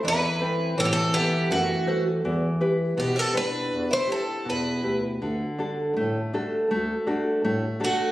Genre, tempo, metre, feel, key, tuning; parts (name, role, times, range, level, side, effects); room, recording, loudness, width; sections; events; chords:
fado-style ballad; 82 BPM; 2/4; rubato; A4 = 443 Hz
picked twelve-string acoustic guitar; melody; 0.0-5.0, 7.8-8.1 s; F#4 to C5; -25 LUFS; equal
picked twelve-string acoustic guitar; second line; 0.0-5.0, 7.8-8.1 s; A3 to E4; -34 LUFS; right 3 dB; slapback echo
nylon-string guitar; accompaniment; 0.0-8.1 s; B2 to E5; -26 LUFS; equal
breathy bass clarinet; bass; 0.0-7.7 s; D2 to B2; -31 LUFS; equal
moderate concert hall reverb, RT60 1.8 s; recorded on a phone in the room, studio reverb, compression; -23 LUFS; side -15 dB against mid
0.0-8.1 A section
0.0 Amadd9; 2.2 Em; 5.2 D